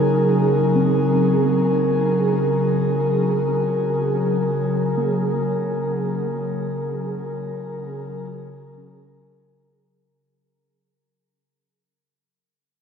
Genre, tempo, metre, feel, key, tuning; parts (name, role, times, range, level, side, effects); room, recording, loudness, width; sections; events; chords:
ambient; free time; Gb lydian; A4 = 440 Hz
airy breathy pad; sustained chords; 0.0-10.1 s; Db3 to Bb4; -19 LUFS; equal; chorus, shimmer reverb
mellow tine electric piano; arpeggios; 0.0-10.4 s; Bb3 to Eb4; -28 LUFS; right 1 dB; medium stereo tremolo, dub echo, shimmer reverb
wet plate reverb, RT60 3.5 s; echo-heavy mix; -18 LUFS; side -7 dB against mid
0.0-10.1 A section
fade-out on tine electric piano 0.0-10.1; fade-out 5.5-10.1
0.0 Gb6